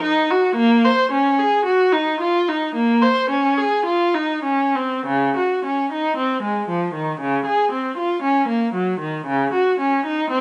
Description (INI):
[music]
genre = classical, baroque-style suite movement for unaccompanied viola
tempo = 49-59 BPM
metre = 4/4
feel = rubato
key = Bb minor, Db major from 5.1 s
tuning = A4 = 440 Hz
[part]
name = rich viola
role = solo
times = 0.0-10.4 s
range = Db3 to C5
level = -19 LUFS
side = equal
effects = none
[sound]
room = moderate stone room reverb, RT60 1.1 s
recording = nothing above 10.6 kHz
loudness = -19 LUFS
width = mono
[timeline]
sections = 0.0-5.1 A section; 5.1-10.4 A section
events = none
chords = none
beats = | 0.56 1.65 2.75 3.85 | 5.05 6.16 7.18 8.21 | 9.25 10.30